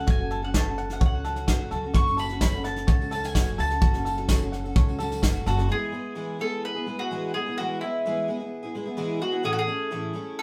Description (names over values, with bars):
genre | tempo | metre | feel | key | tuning
indie folk with a building arrangement | 128 BPM | 4/4 | straight | unclear | A4 = 440 Hz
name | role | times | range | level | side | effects
mandolin | melody | 0.0-10.4 s | E4 to C#6 | -32 LUFS | equal | none
picked twelve-string acoustic guitar | accompaniment | 0.0-10.4 s | A2 to A4 | -34 LUFS | equal | none
bluegrass banjo | arpeggios | 0.0-5.7 s | F#4 to F#5 | -37 LUFS | equal | none
upright bass | bass | 0.0-5.7 s | F#1 to C#2 | -33 LUFS | equal | none
soft brush drum kit | drums | 0.1-5.6 s | kick drum, snare drum | -26 LUFS | equal | none
tambourine | percussion | 2.0-5.6 s | none | -49 LUFS | equal | none
room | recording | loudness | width
moderate studio reverb, RT60 0.5 s | band playing live in one room | -26 LUFS | mono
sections
0.0-5.7 A section; 5.7-10.4 B section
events
none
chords
0.0 F#m; 5.7 E; 9.5 A